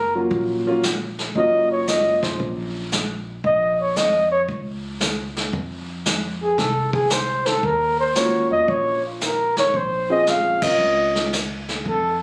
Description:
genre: jazz, small-group swing and bop.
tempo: 114 BPM.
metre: 4/4.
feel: swing 67% on 8ths.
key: Bb minor.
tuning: A4 = 440 Hz.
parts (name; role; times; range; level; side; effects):
breathy flugelhorn; melody; 0.0-12.2 s; F4 to F5; -21 LUFS; equal; none.
upright bass; bass; 0.0-12.2 s; Gb1 to F2; -33 LUFS; equal; none.
warm grand piano; accompaniment; 0.1-2.8, 8.2-11.3 s; Gb3 to Bb4; -26 LUFS; equal; none.
vintage brush drum kit; drums; 0.3-12.2 s; brushed snare drum, hi-hat, kick drum, ride cymbal, snare drum; -28 LUFS; equal; none.
room: moderate studio reverb, RT60 0.9 s.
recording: recorded on a phone in the room, studio reverb.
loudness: -21 LUFS.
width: mono.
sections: 0.0-12.2 A section.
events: band accent 10.5.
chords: 0.0 Ebm7 (rootless); 3.4 Bbm; 5.5 F5; 7.6 Ebm7; 9.7 Bbm7.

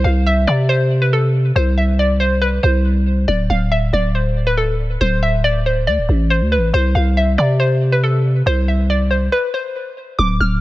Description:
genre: hip hop.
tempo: 139 BPM.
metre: 4/4.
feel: half-time.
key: D dorian.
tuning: A4 = 439 Hz.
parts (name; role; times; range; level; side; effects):
hollow square pluck; melody; 0.0-10.6 s; A4 to F6; -19 LUFS; equal; chorus, low-pass filter, tape echo.
growling 808-style bass; bass; 0.0-10.6 s; D1 to C3; -15 LUFS; equal; none.
granular cloud pad; sustained chords; 10.5-10.6 s; D3 to F4; -43 LUFS; right 1 dB; none.
room: digital ambience.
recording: none.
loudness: -14 LUFS.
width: side -17 dB against mid.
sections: 0.0-10.2 A section.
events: break 9.3-10.2.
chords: 0.0 Cadd9; 3.3 D5; 6.7 N.C..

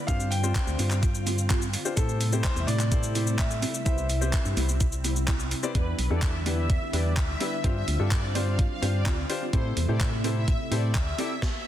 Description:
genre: dance-pop.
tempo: 127 BPM.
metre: 4/4.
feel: straight.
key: unclear.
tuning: A4 = 439 Hz.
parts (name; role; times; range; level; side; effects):
warm concert grand piano; melody; 0.0-5.5 s; A4 to G5; -36 LUFS; left 1 dB; tape echo.
ensemble organ-string; sustained chords; 0.0-11.4 s; C3 to F4; -35 LUFS; equal; ensemble chorus, sidechain pumping.
warm grand piano; accompaniment; 0.1-11.3 s; C4 to D5; -35 LUFS; left 6 dB; sidechain pumping.
mellow electric guitar; riff; 0.1-11.4 s; B3 to G4; -36 LUFS; right 3 dB; ensemble chorus.
organ-like FM bass; bass; 0.1-11.1 s; B1 to A2; -27 LUFS; equal; sidechain pumping.
gated 80s digital drum machine; drums; 0.1-11.5 s; handclaps, hi-hat, kick drum, shaker, snare drum; -28 LUFS; equal; gated reverb, gated reverb snare.
supersaw pad; melody; 5.8-11.6 s; B4 to F5; -35 LUFS; equal; phaser, sidechain pumping, tape echo.
room: little or no reverb.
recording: dense, heavily limited modern master.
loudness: -24 LUFS.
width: side -12 dB against mid.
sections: 0.0-5.8 A section; 5.8-11.7 B section.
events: none.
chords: 0.1 G7sus4; 2.0 Am7; 3.9 Cmaj7; 5.8 Em7; 7.6 G7sus4; 9.5 Am7.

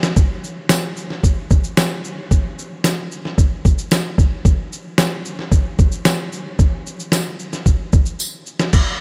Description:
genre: pop.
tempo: 112 BPM.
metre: 4/4.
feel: straight.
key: none.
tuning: none.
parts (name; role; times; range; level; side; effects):
dusty soul sampler-style drum kit; drums; 0.0-8.9 s; crash cymbal, kick drum, shaker, snare drum; -18 LUFS; equal; none.
tambourine; percussion; 0.7-8.3 s; none; -28 LUFS; equal; none.
room: light reverb.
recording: none.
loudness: -18 LUFS.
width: mono.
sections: 0.0-8.7 A section.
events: drum fill 0.0, 8.2-8.7.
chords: none.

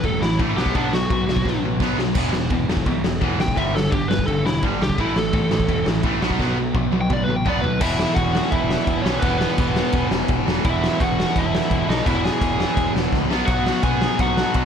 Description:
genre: punk rock.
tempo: 170 BPM.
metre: 4/4.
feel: straight.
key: unclear.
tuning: A4 = 439 Hz.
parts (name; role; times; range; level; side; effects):
biting lead guitar; melody; 0.0-14.7 s; B3 to G#5; -25 LUFS; equal; overdrive.
cranked stack guitar; riff; 0.0-14.7 s; E2 to B3; -26 LUFS; right 15 dB; overdrive.
overdriven semi-hollow guitar; riff; 0.0-14.7 s; E2 to B3; -27 LUFS; right 1 dB; none.
tight distorted guitar; riff; 0.0-14.7 s; E2 to B3; -26 LUFS; left 12 dB; distortion.
growling picked electric bass; bass; 0.0-14.7 s; E1 to D#2; -27 LUFS; equal; overdrive.
raw garage drum kit; drums; 0.0-14.6 s; crash cymbal, kick drum, ride cymbal, snare drum, splash cymbal, toms; -23 LUFS; equal; none.
room: light reverb.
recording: none.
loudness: -18 LUFS.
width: side -7 dB against mid.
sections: 0.0-7.8 A section; 7.8-14.7 B section.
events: lead electric guitar solo 0.0-7.8; drum fill 1.5-2.2, 6.4-7.8, 13.1-13.5.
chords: 0.0 A5; 0.6 B5; 2.2 E5; 3.6 G; 5.0 A5; 6.2 B5; 7.8 E; 13.3 B5.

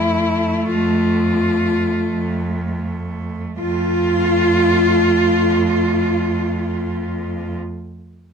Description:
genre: classical, lyrical piece for cello ensemble.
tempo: 39-45 BPM.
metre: 3/4.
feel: rubato.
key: F major.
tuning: A4 = 440 Hz.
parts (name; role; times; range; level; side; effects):
rich cello; melody; 0.0-7.5 s; E4 to F4; -20 LUFS; left 5 dB; none.
rich cello; second line; 0.0-7.5 s; A3 to F4; -22 LUFS; right 6 dB; none.
clear cello; accompaniment; 0.0-7.5 s; A3; -22 LUFS; right 1 dB; none.
rich cello; bass; 0.0-7.5 s; F2; -23 LUFS; right 1 dB; none.
room: light reverb.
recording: minimal, uncompressed stereo recording.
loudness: -16 LUFS.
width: side -6 dB against mid.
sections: 0.0-3.6 A section; 3.6-8.1 B section.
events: slowing down 0.0-3.6.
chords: 0.0 F.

